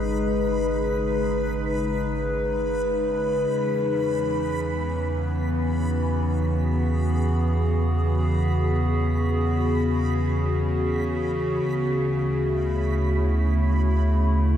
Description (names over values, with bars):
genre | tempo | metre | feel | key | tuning
ambient | free time | none | none | unclear | A4 = 441 Hz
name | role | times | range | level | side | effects
warbly tape-like pad | sustained chords | 0.0-14.6 s | E3 to B4 | -24 LUFS | left 1 dB | chorus, built-in reverb
warm sub bass | bass | 0.0-14.6 s | G#1 to E2 | -25 LUFS | equal | none
bowed-like drone | drone | 0.0-14.6 s | C#3 | -31 LUFS | left 1 dB | built-in reverb
backwards swelling texture | texture | 0.0-14.6 s | B5 | -37 LUFS | right 2 dB | built-in reverb
room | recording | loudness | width
wet lush hall reverb, RT60 2.9 s | dark, warm production | -21 LUFS | side -10 dB against mid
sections
0.0-14.6 A section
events
fade-in on sub bass 0.0-14.6; fade-in on synth drone 0.0-14.6; fade-in on synth texture 0.0-14.6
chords
0.0 G#m; 3.5 Emaj7; 11.7 D